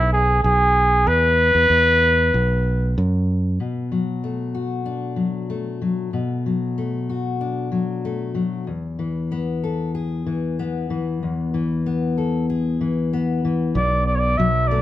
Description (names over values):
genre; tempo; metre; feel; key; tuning
indie folk with a building arrangement; 94 BPM; 4/4; straight; E mixolydian; A4 = 436 Hz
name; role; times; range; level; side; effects
mellow trumpet; melody; 0.0-3.0, 13.8-14.8 s; E4 to E5; -17 LUFS; equal; none
fingered electric bass; bass; 0.0-3.6, 13.8-14.8 s; B1 to F#2; -19 LUFS; right 1 dB; none
fingerpicked steel-string acoustic guitar; accompaniment; 3.6-14.8 s; E2 to A4; -22 LUFS; left 3 dB; none
room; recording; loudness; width
moderate large studio reverb, RT60 1.2 s; none; -18 LUFS; side -13 dB against mid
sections
0.0-3.6 A section; 3.6-13.8 B section; 13.8-14.8 C section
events
build-up 13.8-14.8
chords
0.0 E; 3.6 Bm7; 8.7 E; 13.8 Bm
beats
0.45 | 1.08 1.71 2.34 2.97 | 3.60 4.24 4.87 5.51 | 6.14 6.78 7.41 8.05 | 8.68 9.32 9.95 10.59 | 11.22 11.86 12.49 13.13 | 13.76 14.40